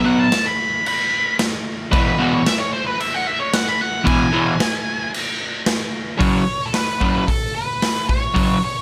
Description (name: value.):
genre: garage rock duo or trio.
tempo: 112 BPM.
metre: 4/4.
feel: straight.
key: F# minor.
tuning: A4 = 440 Hz.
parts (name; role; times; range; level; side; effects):
octave-fuzz lead guitar; melody; 0.0-8.8 s; F#4 to B5; -24 LUFS; equal; distortion.
crunchy overdriven guitar; riff; 0.0-8.6 s; E2 to B3; -19 LUFS; equal; none.
raw garage drum kit; drums; 0.3-8.5 s; crash cymbal, hi-hat, kick drum, snare drum; -24 LUFS; equal; none.
room: light reverb.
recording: none.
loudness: -19 LUFS.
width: mono.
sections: 0.0-6.2 A section; 6.2-8.8 B section.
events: lead electric guitar solo 0.0-6.2.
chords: 0.0 B5; 1.9 E; 6.2 F#5.